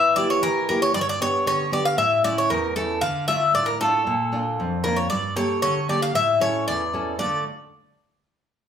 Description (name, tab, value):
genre	greek folk, Greek bouzouki band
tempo	115 BPM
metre	2/4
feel	straight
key	D harmonic minor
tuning	A4 = 440 Hz
part	Greek bouzouki	melody	0.0-7.4 s	A4 to F5	-21 LUFS	left 1 dB	none
part	nylon-string guitar	accompaniment	0.0-7.4 s	E2 to A4	-25 LUFS	equal	none
room	wet large studio reverb, RT60 0.9 s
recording	band playing live in one room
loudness	-20 LUFS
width	side -8 dB against mid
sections	0.0-7.2 A section; 7.2-8.2 B section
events	none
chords	0.0 Edim; 0.9 G; 2.0 A; 3.0 Dm; 4.1 Bb; 5.1 Gmadd9; 6.1 A; 7.2 Dm